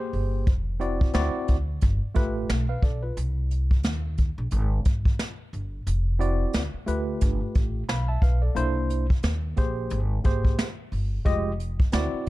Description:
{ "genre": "hip hop, jazz-hop", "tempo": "89 BPM", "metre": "4/4", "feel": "swing 58% on 16ths", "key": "unclear", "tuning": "A4 = 437 Hz", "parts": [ { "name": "tine electric piano", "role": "accompaniment", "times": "0.0-12.3 s", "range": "Ab3 to B5", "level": "-29 LUFS", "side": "equal", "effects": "medium stereo tremolo" }, { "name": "upright bass", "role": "bass", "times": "0.1-12.2 s", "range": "F1 to Eb2", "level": "-26 LUFS", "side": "equal", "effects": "none" }, { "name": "jazz brush drum kit", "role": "drums", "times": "0.1-12.3 s", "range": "hi-hat, kick drum, snare drum", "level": "-24 LUFS", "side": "equal", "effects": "none" } ], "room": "small room ambience", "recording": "dark, warm production", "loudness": "-23 LUFS", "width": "side -18 dB against mid", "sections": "0.0-12.3 A section", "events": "kick muted 5.9-7.2", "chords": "0.5 F5; 1.1 D9; 1.8 G9; 3.2 N.C.; 3.8 Eb5; 4.5 N.C.; 5.9 F5; 6.5 D5; 7.2 G9; 8.6 C9; 9.2 Eb; 9.9 Abmaj9; 11.3 Fm9" }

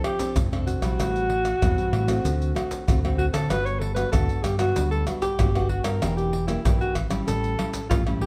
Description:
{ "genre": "samba and choro", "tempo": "95 BPM", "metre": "4/4", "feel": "straight", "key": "unclear", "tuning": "A4 = 440 Hz", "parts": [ { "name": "breathy alto saxophone", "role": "melody", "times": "0.0-8.3 s", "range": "E4 to C#5", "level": "-30 LUFS", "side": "equal", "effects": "none" }, { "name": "nylon-string guitar", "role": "accompaniment", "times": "0.0-8.3 s", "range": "A2 to A4", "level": "-32 LUFS", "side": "equal", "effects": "none" }, { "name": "surdo, pandeiro, tamborim and maracas", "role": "percussion", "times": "0.0-8.3 s", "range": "none", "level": "-28 LUFS", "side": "equal", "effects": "none" }, { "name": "deep dub fingered electric bass", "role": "bass", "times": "0.4-8.3 s", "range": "E1 to D3", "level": "-29 LUFS", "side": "equal", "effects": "none" } ], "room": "moderate large studio reverb, RT60 1.0 s", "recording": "heard from further back in the room", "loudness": "-24 LUFS", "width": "mono", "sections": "0.0-8.3 A section", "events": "none", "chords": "0.0 F6; 1.0 Am7; 2.2 D7; 3.5 Gmaj7; 6.0 Em7b5; 7.3 A7" }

